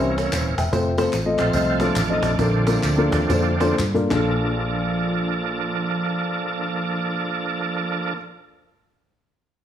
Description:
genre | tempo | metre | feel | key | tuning
uptempo gospel | 112-150 BPM | 4/4 | swing 63% on 8ths | Bb major | A4 = 439 Hz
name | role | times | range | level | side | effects
dark upright piano | accompaniment | 0.0-8.2 s | Bb1 to G5 | -23 LUFS | left 2 dB | none
bright tonewheel organ | sustained chords | 0.0-8.1 s | D3 to A4 | -24 LUFS | right 3 dB | slow rotary speaker, overdrive, chorus vibrato
vintage muted fingered electric bass | bass | 0.0-8.1 s | Eb1 to G2 | -25 LUFS | equal | none
cajon | drums | 0.2-4.2 s | none | -30 LUFS | equal | none
tambourine and handclaps | percussion | 0.2-4.6 s | none | -33 LUFS | equal | none
room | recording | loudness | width
light reverb, studio reverb | none | -19 LUFS | side -10 dB against mid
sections
0.0-4.3 A section; 4.3-8.6 B section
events
tonewheel organ solo 0.0-4.3; slowing down 0.7-4.3; drum fill 3.8-4.3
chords
0.0 C7b9; 0.7 F; 2.4 Bbmaj7

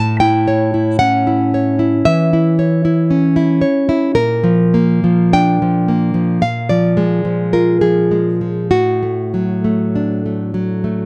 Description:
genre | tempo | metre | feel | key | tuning
romantic piece for solo classical guitar | 49-58 BPM | 4/4 | rubato | unclear | A4 = 439 Hz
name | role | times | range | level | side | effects
nylon-string guitar | solo | 0.0-11.1 s | A2 to A5 | -15 LUFS | equal | none
room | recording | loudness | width
studio reverb | dry, close 1970s-style studio recording | -15 LUFS | mono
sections
0.0-11.1 A section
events
none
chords
0.0 A; 4.2 Bb; 6.4 Bb5; 8.7 D/A

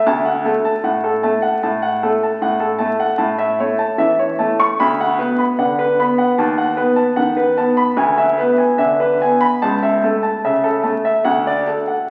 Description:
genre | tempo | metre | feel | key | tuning
classical, baroque-style suite movement for grand piano | 75 BPM | 4/4 | rubato | D major, A major from 3.2 s | A4 = 440 Hz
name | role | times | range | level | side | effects
clear grand piano | solo | 0.0-12.1 s | C#2 to C#6 | -17 LUFS | equal | none
room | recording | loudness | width
wet recital hall reverb, RT60 1.8 s | very old 78 rpm record, vinyl crackle | -17 LUFS | mono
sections
0.0-12.1 A section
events
none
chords
0.1 D; 3.2 A; 4.8 Bm/D; 6.4 B7/D#; 8.0 E7/D; 9.6 A/C#; 11.2 D

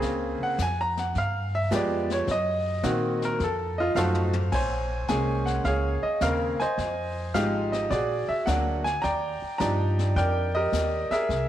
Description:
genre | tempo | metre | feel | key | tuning
jazz piano trio | 107 BPM | 4/4 | swing 68% on 8ths | Bb minor | A4 = 440 Hz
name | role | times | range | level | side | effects
bright grand piano | melody | 0.0-11.5 s | Db3 to Bb5 | -25 LUFS | right 1 dB | none
upright bass | bass | 0.0-11.5 s | Ab1 to Bb2 | -29 LUFS | equal | none
jazz brush drum kit | drums | 0.0-11.5 s | brushed snare drum, crash cymbal, hi-hat, kick drum, snare drum, toms | -36 LUFS | left 6 dB | none
room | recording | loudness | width
light reverb, studio ambience | 1960s-style stereo | -24 LUFS | side -12 dB against mid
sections
0.0-4.5 A section; 4.5-11.5 B section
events
grand piano solo 0.0-4.5; drum fill 4.0-4.5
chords
0.0 Bbm9; 1.2 G7b9; 2.3 Cm7b5; 3.4 F7b9; 4.5 Bbm9; 6.8 Fm9; 7.9 Bbaug7; 9.0 Ebmaj9

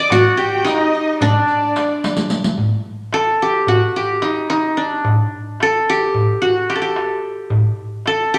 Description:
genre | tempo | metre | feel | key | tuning
Turkish makam ensemble | 219 BPM (eighths) | 9/8 | straight | D makam hicaz | A4 = 440 Hz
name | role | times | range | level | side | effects
qanun | melody | 0.0-8.4 s | D4 to D5 | -19 LUFS | equal | none
rich kamancheh | second line | 0.0-2.3 s | D4 to D5 | -26 LUFS | equal | none
warm chamber violin section | second line | 0.0-2.3 s | D5 to D6 | -25 LUFS | equal | none
darbuka | percussion | 0.1-8.4 s | none | -23 LUFS | equal | none
riq | percussion | 0.1-2.6 s | none | -25 LUFS | equal | none
room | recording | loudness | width
wet large studio reverb, RT60 1.3 s | none | -17 LUFS | mono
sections
0.0-2.6 A section; 2.6-8.4 B section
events
drum fill 2.0-2.6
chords
none

